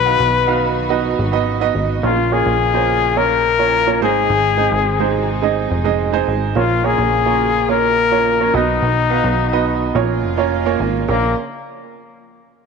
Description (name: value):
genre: piano-driven pop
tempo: 106 BPM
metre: 4/4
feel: straight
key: Bb minor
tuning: A4 = 439 Hz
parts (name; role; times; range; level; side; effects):
- dark trumpet; melody; 0.0-11.4 s; Bb3 to B4; -17 LUFS; left 9 dB; none
- warm upright piano; accompaniment; 0.0-11.3 s; Bb1 to Ab5; -18 LUFS; right 12 dB; none
- warm studio string section; sustained chords; 0.0-11.3 s; Ab2 to Bb4; -31 LUFS; equal; none
- plucky analog bass; bass; 0.0-11.3 s; F1 to B1; -22 LUFS; equal; none
room: moderate echo chamber reverb, RT60 2.6 s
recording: 1960s-style stereo with parts hard left and right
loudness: -14 LUFS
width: side -5 dB against mid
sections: 0.0-11.1 A section; 11.1-12.7 B section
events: upright piano fill 10.2-11.1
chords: 0.0 B; 2.0 Bbm; 4.0 Ab; 6.6 Bbm; 8.5 B; 10.0 Bbm